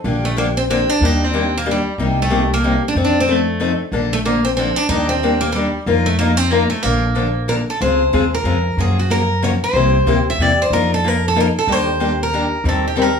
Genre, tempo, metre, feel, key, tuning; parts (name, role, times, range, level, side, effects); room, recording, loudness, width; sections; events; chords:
acoustic string swing (jazz manouche); 186 BPM; 3/4; swing 60% on 8ths; Bb major; A4 = 440 Hz
picked steel-string acoustic guitar; accompaniment; 0.0-13.1 s; C3 to Bb4; -19 LUFS; left 3 dB
upright bass; bass; 0.0-13.2 s; Bb1 to Gb2; -20 LUFS; equal
picked steel-string acoustic guitar; melody; 0.2-13.2 s; G3 to E5; -18 LUFS; right 1 dB
moderate studio reverb, RT60 0.5 s; studio reverb; -14 LUFS; side -6 dB against mid
0.0-7.8 A section; 7.8-13.2 B section
0.0 Bb6; 1.0 Ebmaj7; 2.0 Cm7; 3.0 F7; 3.9 Bbmaj7; 4.9 Ebmaj7; 5.9 F7sus4; 6.8 Bbmaj7; 7.8 Dbmaj7; 8.8 Gbmaj7; 9.7 C7; 10.7 F7sus4; 11.7 Ebmaj7; 12.6 Cm7/Eb